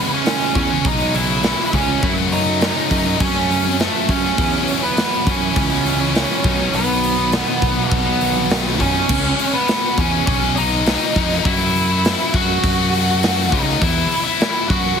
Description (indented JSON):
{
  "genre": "quiet-loud alternative rock",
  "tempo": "102 BPM",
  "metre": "4/4",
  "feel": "straight",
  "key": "F# dorian",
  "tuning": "A4 = 440 Hz",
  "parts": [
    { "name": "octave-fuzz lead guitar", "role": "melody", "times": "0.0-15.0 s", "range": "A3 to F#5", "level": "-20 LUFS", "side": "right 2 dB", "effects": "distortion, digital delay" },
    { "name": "scooped high-gain guitar", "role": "riff", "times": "0.0-15.0 s", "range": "F#2 to E4", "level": "-22 LUFS", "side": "left 16 dB", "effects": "distortion" },
    { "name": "thick fuzz guitar", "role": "riff", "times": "0.0-9.1 s", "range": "F#2 to E4", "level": "-25 LUFS", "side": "right 12 dB", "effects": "distortion" },
    { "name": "big rock drum kit", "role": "drums", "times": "0.3-14.8 s", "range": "crash cymbal, hi-hat, kick drum, snare drum", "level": "-21 LUFS", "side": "equal", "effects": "none" },
    { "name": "fuzz fingered electric bass", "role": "bass", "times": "0.6-14.9 s", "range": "B1 to F#2", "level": "-22 LUFS", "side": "equal", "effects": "overdrive" }
  ],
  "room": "light reverb",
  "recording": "heavily compressed radio sound",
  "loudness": "-15 LUFS",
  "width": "side -7 dB against mid",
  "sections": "0.0-9.1 A section; 9.1-15.0 A section",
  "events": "none",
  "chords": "0.0 C#m7; 2.0 F#m; 4.4 Esus2; 6.4 B; 9.1 C#m7; 11.5 F#m; 13.8 Esus2",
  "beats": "0.26 0.85 1.44 | 2.02 2.61 3.20 3.79 | 4.38 4.97 5.56 6.15 | 6.74 7.33 7.92 8.50 | 9.09 9.68 10.27 10.86 | 11.45 12.04 12.63 13.22 | 13.81 14.40 14.99"
}